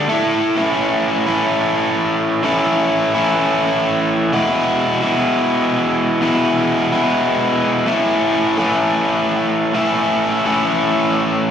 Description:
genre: rock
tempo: 127 BPM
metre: 4/4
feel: straight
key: A major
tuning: A4 = 440 Hz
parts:
  - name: overdriven electric guitar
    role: solo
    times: 0.0-11.5 s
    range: E2 to A4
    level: -14 LUFS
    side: equal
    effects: slapback echo
room: moderate club reverb, RT60 0.6 s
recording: live gig heard through the venue's PA, recital hall reverb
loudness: -14 LUFS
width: side -8 dB against mid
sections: 0.6-11.5 A section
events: none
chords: 0.1 A5; 0.6 A; 4.3 E; 7.9 A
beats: 0.10 | 0.57 1.04 1.51 1.98 | 2.45 2.92 3.39 3.86 | 4.33 4.80 5.27 5.74 | 6.21 6.68 7.16 7.63 | 8.10 8.57 9.04 9.51 | 9.98 10.46 10.93 11.40

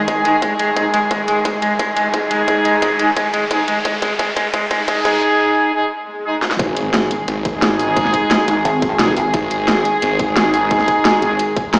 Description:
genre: dark technical drum and bass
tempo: 175 BPM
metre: 4/4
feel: straight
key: unclear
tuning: A4 = 442 Hz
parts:
  - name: rich chamber string section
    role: sustained chords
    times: 0.0-11.8 s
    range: D#3 to G#4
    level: -20 LUFS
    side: equal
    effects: sidechain pumping
  - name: clear brass ensemble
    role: stabs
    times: 0.0-11.3 s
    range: G#3 to G#4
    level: -18 LUFS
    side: equal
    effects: vintage 12-bit sampler grit, low-pass filter, dub echo
  - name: riser, swell and impact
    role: sound effects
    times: 0.2-8.0 s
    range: none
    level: -26 LUFS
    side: equal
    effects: none
  - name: semi-hollow electric guitar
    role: arpeggios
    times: 0.1-5.2 s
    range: G#3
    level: -19 LUFS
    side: equal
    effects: sidechain pumping, low-pass filter, dub echo
  - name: drum and bass drum kit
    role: drums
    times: 0.1-11.8 s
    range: hi-hat, snare drum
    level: -18 LUFS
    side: equal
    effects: overdrive
  - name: electronic kick drum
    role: drums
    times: 0.1-11.6 s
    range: none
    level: -21 LUFS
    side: equal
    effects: overdrive, high-pass filter on kick
  - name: snarling distorted saw bass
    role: bass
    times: 6.6-11.4 s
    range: G#1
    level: -21 LUFS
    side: equal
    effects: distortion, tube saturation
  - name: pulsing pluck wobble bass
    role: bass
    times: 8.7-9.3, 11.7-11.8 s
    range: G#1 to A1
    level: -18 LUFS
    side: equal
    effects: chorus
room: moderate plate reverb, RT60 1.8 s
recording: played on a big sound system in a bare room, stone room reverb, high-pass filter, small speaker sound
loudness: -14 LUFS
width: side -28 dB against mid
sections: 0.0-6.6 A section; 6.6-11.8 B section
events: build-up 0.0-6.6; riser 0.2-5.2; drum fill 1.1-5.2, 6.4; swell 5.9-6.6; drop 6.6-11.8; impact 6.6-8.0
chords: 0.0 G#5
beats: 0.08 0.42 0.77 | 1.11 1.45 1.79 2.14 | 2.48 2.82 3.17 3.51 | 3.85 4.19 4.54 4.88 | 5.22 5.57 5.91 6.25 | 6.59 6.94 7.28 7.62 | 7.96 8.31 8.65 8.99 | 9.34 9.68 10.02 10.37 | 10.71 11.05 11.39 11.74

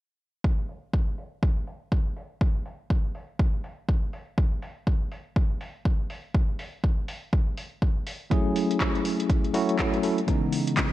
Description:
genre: deep house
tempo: 122 BPM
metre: 4/4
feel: swing 60% on 16ths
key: F# minor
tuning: A4 = 440 Hz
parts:
  - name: electronic kick drum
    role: drums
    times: 0.4-10.9 s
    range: none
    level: -24 LUFS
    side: equal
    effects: overdrive
  - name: deep house drum kit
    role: drums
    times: 0.7-10.9 s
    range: handclaps, hi-hat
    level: -33 LUFS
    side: equal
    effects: overdrive, low-pass filter on hats, low-pass filter on snare, low-pass filter on room
  - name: bell-like tine electric piano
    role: stabs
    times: 8.3-10.9 s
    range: C#3 to A4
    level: -24 LUFS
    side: equal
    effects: medium stereo tremolo, sidechain pumping, analog delay
room: digital ambience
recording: none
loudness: -24 LUFS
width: side -15 dB against mid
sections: 0.4-10.9 A section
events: filter sweep on drum 0.4-10.9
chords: 0.4 N.C.; 8.3 F#m9; 10.3 C#m9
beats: | 0.44 0.94 1.43 1.92 | 2.41 2.90 3.39 3.89 | 4.38 4.87 5.36 5.85 | 6.34 6.84 7.33 7.82 | 8.31 8.80 9.30 9.79 | 10.28 10.77

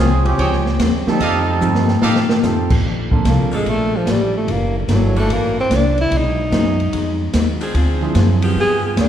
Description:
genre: jazz, big band swing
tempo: 147 BPM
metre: 4/4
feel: swing 67% on 8ths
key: unclear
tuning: A4 = 440 Hz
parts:
  - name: brilliant trombone section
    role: second line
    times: 0.0-2.4 s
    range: F3 to A4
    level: -21 LUFS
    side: right 4 dB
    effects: none
  - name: vintage hollow-body jazz guitar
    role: accompaniment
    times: 0.0-9.1 s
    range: Gb2 to Ab4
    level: -25 LUFS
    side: left 2 dB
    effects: none
  - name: upright bass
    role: bass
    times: 0.0-9.1 s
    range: Gb1 to A2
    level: -19 LUFS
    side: equal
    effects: none
  - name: open jazz drum kit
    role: drums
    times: 0.3-9.1 s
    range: crash cymbal, hi-hat, kick drum, ride cymbal, snare drum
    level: -20 LUFS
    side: left 1 dB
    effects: none
  - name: bright trumpet section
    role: stabs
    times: 0.4-2.2 s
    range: G4 to G5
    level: -25 LUFS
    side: right 2 dB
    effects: none
  - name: warm concert grand piano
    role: accompaniment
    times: 1.1-8.5 s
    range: F3 to A4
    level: -24 LUFS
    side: right 4 dB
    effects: none
  - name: breathy tenor saxophone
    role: melody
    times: 3.3-9.1 s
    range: D3 to Ab4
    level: -19 LUFS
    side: equal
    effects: none
  - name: edgy saxophone section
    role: sustained chords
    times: 3.5-9.0 s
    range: Fb3 to A4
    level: -27 LUFS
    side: left 1 dB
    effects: none
room: moderate scoring stage reverb, RT60 2.0 s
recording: heard from further back in the room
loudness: -14 LUFS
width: side -10 dB against mid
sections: 0.0-2.8 A section; 2.8-9.1 B section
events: trombone section solo 0.0-2.8; drum fill 1.6-2.4; tenor saxophone solo 2.8-9.1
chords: 0.0 Dbmaj7; 1.2 F9; 2.8 Bbmaj7; 4.5 Gb7alt; 6.1 B6; 7.8 Dm7b5; 8.6 G7b9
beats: 0.39 0.80 | 1.21 1.61 2.02 2.43 | 2.84 3.25 3.66 4.07 | 4.48 4.89 5.30 5.71 | 6.12 6.52 6.93 7.34 | 7.75 8.16 8.57 8.98

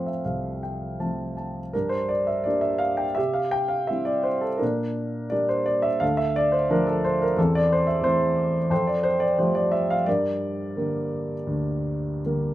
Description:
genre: classical, lyrical solo piano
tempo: 74-92 BPM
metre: 4/4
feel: rubato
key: G dorian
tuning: A4 = 441 Hz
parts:
  - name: dark grand piano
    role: solo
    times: 0.0-12.5 s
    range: C2 to A5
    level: -22 LUFS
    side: equal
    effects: none
room: moderate small room reverb, RT60 0.5 s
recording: minimal, uncompressed stereo recording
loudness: -22 LUFS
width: side -14 dB against mid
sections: 0.0-12.5 A section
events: grand piano fill 0.0-1.7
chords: 0.0 F; 1.7 Gm; 3.2 C; 4.6 Gm/Bb; 6.0 Dm; 7.4 Am/E; 8.7 Fadd9; 10.1 Gm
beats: 0.24 0.99 | 1.74 2.46 3.18 3.91 | 4.62 5.32 6.02 6.71 | 7.38 8.04 8.71 9.39 | 10.07 10.76 11.48 12.25

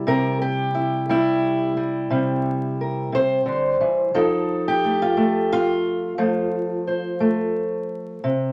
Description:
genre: acoustic country blues, solo or duo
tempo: 59 BPM (dotted quarters)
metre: 12/8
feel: straight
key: unclear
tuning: A4 = 444 Hz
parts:
  - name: fingerpicked steel-string acoustic guitar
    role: solo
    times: 0.0-8.5 s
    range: C3 to C5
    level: -22 LUFS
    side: equal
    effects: none
room: moderate studio ambience, RT60 0.5 s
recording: vinyl crackle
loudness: -22 LUFS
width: mono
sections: 0.0-8.5 A section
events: none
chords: 0.0 C7; 4.1 F7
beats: | 0.07 1.09 2.11 3.13 | 4.15 5.17 6.19 7.21 | 8.23

